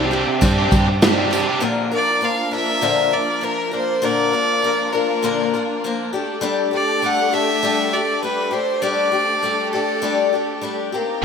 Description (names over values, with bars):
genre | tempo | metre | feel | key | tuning
folk rock and heartland rock | 100 BPM | 4/4 | straight | unclear | A4 = 438 Hz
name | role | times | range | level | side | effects
rich fiddle | melody | 0.0-10.6 s | G4 to F#5 | -21 LUFS | equal | ping-pong delay
picked swing-style acoustic guitar | accompaniment | 0.0-11.2 s | Bb2 to Bb4 | -21 LUFS | left 5 dB | lush chorus
rich symphonic string section | sustained chords | 0.0-11.2 s | A3 to C5 | -27 LUFS | right 3 dB | none
biting overdriven guitar | riff | 0.0-1.6, 11.2 s | C3 to G4 | -22 LUFS | right 2 dB | none
fingered electric bass | bass | 0.0-1.4 s | C2 to G2 | -21 LUFS | right 1 dB | none
vintage drum kit | drums | 0.1-1.5 s | crash cymbal, kick drum, snare drum | -19 LUFS | right 1 dB | gated reverb
tambourine | percussion | 0.1-1.5 s | none | -36 LUFS | right 9 dB | none
room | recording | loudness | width
moderate plate reverb, RT60 1.6 s | bright 1980s-style digital production | -17 LUFS | side -6 dB against mid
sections
0.0-1.6 A section; 1.6-11.2 A section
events
none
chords
0.0 Csus2; 1.6 Bb; 6.1 Gsus2